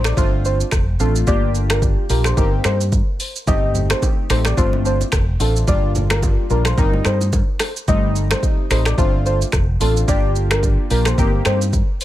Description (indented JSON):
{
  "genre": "afrobeats",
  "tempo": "109 BPM",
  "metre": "4/4",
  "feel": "swing 58% on 16ths",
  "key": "G minor",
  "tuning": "A4 = 440 Hz",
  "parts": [
    { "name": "soft struck synth lead", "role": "melody", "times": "0.0-11.6 s", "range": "A4 to Eb5", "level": "-24 LUFS", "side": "left 1 dB", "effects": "chorus, digital delay" },
    { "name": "warm analog keys", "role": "accompaniment", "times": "0.0-11.7 s", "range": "G3 to G4", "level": "-24 LUFS", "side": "left 1 dB", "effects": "chorus, phaser" },
    { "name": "mellow fretless electric bass", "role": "bass", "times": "0.0-11.8 s", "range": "F1 to G2", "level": "-19 LUFS", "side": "equal", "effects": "none" },
    { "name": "deep house drum kit", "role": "drums", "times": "0.0-12.0 s", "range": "finger snaps, hi-hat, kick drum, rim click, shaker", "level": "-19 LUFS", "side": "equal", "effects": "overdrive" },
    { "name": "congas and bongos", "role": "percussion", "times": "3.5-7.8 s", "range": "none", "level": "-28 LUFS", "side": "right 2 dB", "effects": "none" }
  ],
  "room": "little or no reverb",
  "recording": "none",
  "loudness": "-15 LUFS",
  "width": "side -14 dB against mid",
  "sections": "0.0-7.9 A section; 7.9-12.0 B section",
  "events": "none",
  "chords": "0.2 Dm7/G; 1.3 Gm7; 2.4 Cm7/G; 3.5 Am7b5/G; 4.6 Dm7/G; 5.7 Gm7; 6.8 Cm7/G; 7.9 Am7b5/G; 9.0 Dm7/G; 10.1 Gm7; 11.2 Cm7/G"
}